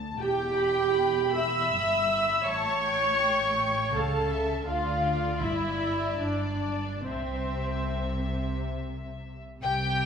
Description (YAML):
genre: classical, slow romantic movement for string orchestra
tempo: 66-85 BPM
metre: 3/4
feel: rubato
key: C major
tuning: A4 = 441 Hz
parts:
  - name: warm studio violin section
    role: melody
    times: 0.0-10.1 s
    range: D5 to B5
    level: -35 LUFS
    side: left 4 dB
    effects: none
  - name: dark chamber double bass section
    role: bass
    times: 0.0-10.1 s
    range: E1 to D2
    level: -35 LUFS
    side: equal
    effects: none
  - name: warm studio cello section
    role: bass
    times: 0.0-10.1 s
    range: D2 to D3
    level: -36 LUFS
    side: right 1 dB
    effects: none
  - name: dark studio violin section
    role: second line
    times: 0.2-10.1 s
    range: G4 to E6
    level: -33 LUFS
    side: left 1 dB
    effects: none
  - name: warm studio viola section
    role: accompaniment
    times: 0.2-8.7 s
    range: C4 to E5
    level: -27 LUFS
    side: right 1 dB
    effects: none
room: wet recital hall reverb, RT60 1.4 s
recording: recorded in a church or concert hall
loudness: -25 LUFS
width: side -6 dB against mid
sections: 0.0-9.6 A section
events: none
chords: 0.2 Em; 2.5 A7; 4.7 Dm; 5.4 G5; 7.1 C